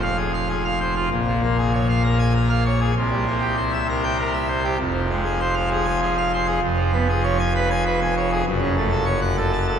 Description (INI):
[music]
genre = classical, organ toccata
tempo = 98 BPM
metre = 3/4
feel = straight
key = F minor, F# minor from 6.6 s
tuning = A4 = 440 Hz
[part]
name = pipe organ, full organ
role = solo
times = 0.0-9.8 s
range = F1 to A5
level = -19 LUFS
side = equal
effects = none
[sound]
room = wet cathedral reverb, RT60 6.1 s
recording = minimal, uncompressed stereo recording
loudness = -19 LUFS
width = side -8 dB against mid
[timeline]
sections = 0.0-9.8 A section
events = none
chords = 0.0 Fm; 1.1 Bbm7; 3.0 C7; 4.8 Fm; 6.6 C#7/E#; 8.5 F#m